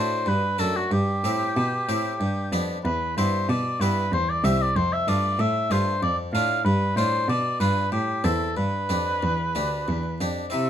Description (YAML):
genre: classical, baroque-style sonata movement with continuo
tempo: 93 BPM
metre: 3/4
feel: straight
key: unclear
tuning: A4 = 440 Hz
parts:
  - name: warm oboe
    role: melody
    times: 0.0-10.7 s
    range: F#4 to F5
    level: -25 LUFS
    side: equal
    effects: none
  - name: harpsichord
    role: accompaniment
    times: 0.0-10.7 s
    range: C2 to G4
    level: -29 LUFS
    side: left 1 dB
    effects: none
  - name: rich cello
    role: bass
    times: 0.0-10.7 s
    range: C2 to C3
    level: -26 LUFS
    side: right 1 dB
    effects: none
room: light reverb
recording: close, detailed microphones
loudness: -22 LUFS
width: side -10 dB against mid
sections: 0.0-10.5 A section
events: none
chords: 0.0 D7; 0.9 C/G; 2.2 G; 2.8 Em; 4.1 C/E; 4.8 F; 6.0 Dm/F; 6.7 G7; 7.9 Am; 8.6 G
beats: 0.27 | 0.92 1.56 2.21 | 2.85 3.49 4.13 | 4.77 5.40 6.03 | 6.66 7.29 7.92 | 8.57 9.22 9.88 | 10.53